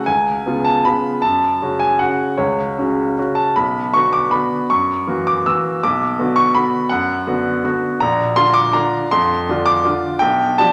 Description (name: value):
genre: classical, piano waltz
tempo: 146-176 BPM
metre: 3/4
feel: rubato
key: F# minor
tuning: A4 = 440 Hz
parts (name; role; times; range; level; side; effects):
- clear baby grand piano; solo; 0.0-10.7 s; Bb1 to E6; -17 LUFS; equal; none
room: wet scoring stage reverb, RT60 1.9 s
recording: faint mains hum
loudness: -17 LUFS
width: mono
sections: 0.0-10.7 A section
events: none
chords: 0.1 C#7; 1.2 F#m; 3.6 Bm; 4.7 F#7; 5.8 Bm; 8.0 Bb; 10.2 G7/B